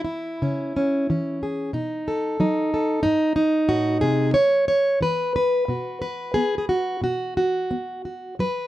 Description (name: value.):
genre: folk, solo fingerstyle acoustic guitar.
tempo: 91 BPM.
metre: 4/4.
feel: rubato.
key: unclear.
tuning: A4 = 440 Hz.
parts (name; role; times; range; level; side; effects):
fingerpicked plugged-in steel-string acoustic guitar; solo; 0.0-8.7 s; G#2 to C#5; -20 LUFS; equal; none.
room: light reverb.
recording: dark, warm production.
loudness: -20 LUFS.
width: side -14 dB against mid.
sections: 0.0-8.7 A section.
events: none.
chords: 0.4 C#m; 1.7 B; 3.0 G#; 4.3 C#m; 5.7 B5.